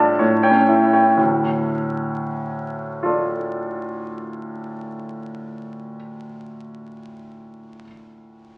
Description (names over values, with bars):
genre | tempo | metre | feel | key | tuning
classical, romantic character piece for solo piano | 64 BPM | 3/4 | rubato | D minor | A4 = 445 Hz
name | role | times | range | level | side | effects
clear grand piano | solo | 0.0-8.6 s | D2 to A5 | -22 LUFS | equal | none
room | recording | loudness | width
wet recital hall reverb, RT60 1.8 s | very old 78 rpm record, vinyl crackle, nothing above 10.5 kHz | -20 LUFS | mono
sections
0.0-1.2 A section; 1.2-6.8 B section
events
slowing down 0.0-1.2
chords
0.2 A7; 1.2 Dm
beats
0.20 | 1.17 2.11 3.03 | 3.94 4.88 5.83